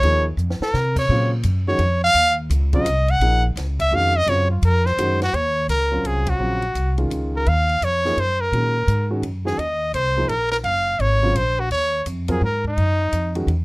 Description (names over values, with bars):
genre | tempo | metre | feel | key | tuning
modal jazz | 169 BPM | 3/4 | swing 64% on 8ths | Eb dorian | A4 = 441 Hz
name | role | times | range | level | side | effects
clear trumpet | melody | 0.0-13.4 s | Eb4 to Gb5 | -20 LUFS | equal | none
warm grand piano | accompaniment | 0.0-13.5 s | Db3 to Bb4 | -26 LUFS | right 1 dB | none
upright bass | bass | 0.0-13.6 s | Gb1 to C3 | -21 LUFS | equal | none
compact cocktail drum kit | drums | 0.0-13.6 s | crash cymbal, hi-hat, kick drum, ride cymbal, snare drum | -32 LUFS | equal | none
room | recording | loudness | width
little or no reverb | rough home demo mix | -17 LUFS | side -24 dB against mid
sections
0.0-5.3 A section; 5.3-13.6 B section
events
trumpet solo 0.0-5.3; drum fill 0.4-0.7; band accent 6.2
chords
0.0 Ebm9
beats
| 0.03 0.39 0.74 | 1.09 1.45 1.80 | 2.15 2.50 2.86 | 3.21 3.56 3.92 | 4.27 4.62 4.98 | 5.33 5.68 6.04 | 6.39 6.75 7.10 | 7.45 7.81 8.16 | 8.52 8.87 9.23 | 9.58 9.94 10.29 | 10.65 11.00 11.36 | 11.71 12.07 12.42 | 12.78 13.13 13.49